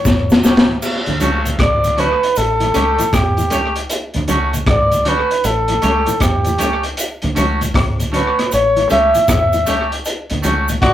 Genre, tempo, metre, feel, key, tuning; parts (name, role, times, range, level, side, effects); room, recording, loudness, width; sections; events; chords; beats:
roots reggae; 78 BPM; 4/4; swing 65% on 16ths; D major; A4 = 444 Hz
warm flugelhorn; melody; 0.0-10.9 s; G4 to E5; -16 LUFS; equal
deep dub fingered electric bass; bass; 0.1-10.9 s; A1 to E2; -21 LUFS; equal
crunchy breakbeat drum kit; drums; 0.1-10.9 s; crash cymbal, hi-hat, kick drum, rim click, snare drum; -18 LUFS; equal; dub echo
cabasa; percussion; 0.1-10.8 s; -30 LUFS; equal
mellow tonewheel organ; accompaniment; 0.3-10.7 s; D2 to C#4; -23 LUFS; left 1 dB; chorus vibrato, slow rotary speaker
twangy electric guitar; accompaniment; 0.4-10.7 s; A3 to G4; -21 LUFS; right 1 dB
clear tenor saxophone; second line; 10.8-10.9 s; F#4; -13 LUFS; left 1 dB
moderate small room reverb, RT60 0.5 s; rough rehearsal-room recording, tube saturation; -13 LUFS; side -12 dB against mid
0.8-10.9 A section
drum fill 0.0-0.8; band accent 10.0-10.9
0.0 A7; 0.8 Dmaj7; 2.4 A7; 3.9 Dmaj7; 5.4 A7; 7.0 Dmaj7; 8.5 A7; 10.0 Dmaj7
0.05 | 0.82 1.59 2.36 3.12 | 3.90 4.66 5.43 6.20 | 6.97 7.74 8.51 9.28 | 10.05 10.81